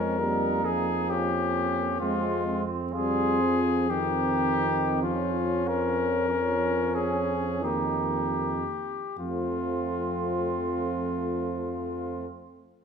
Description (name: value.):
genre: classical, hymn-like piece for brass band.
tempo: 37-67 BPM.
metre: 3/4.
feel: rubato.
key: F minor.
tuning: A4 = 441 Hz.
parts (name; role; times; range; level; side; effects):
warm cornet; melody; 0.0-12.3 s; F4 to Bb4; -29 LUFS; left 8 dB; none.
warm flugelhorn; second line; 0.0-12.3 s; C4 to F4; -33 LUFS; right 9 dB; none.
warm euphonium; accompaniment; 0.0-12.3 s; Ab3 to Db4; -34 LUFS; equal; none.
warm trombone; accompaniment; 0.0-12.3 s; Eb3 to Ab3; -33 LUFS; right 2 dB; none.
warm tuba; bass; 0.0-12.3 s; F2; -32 LUFS; right 3 dB; none.
room: wet recital hall reverb, RT60 1.6 s.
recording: minimal, uncompressed stereo recording.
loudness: -25 LUFS.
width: side -6 dB against mid.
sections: 0.0-9.2 A section; 9.2-12.8 B section.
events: slowing down 0.7-9.2.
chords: 0.0 Bbm/F; 2.0 Fm; 5.0 Bbm/F; 9.2 F.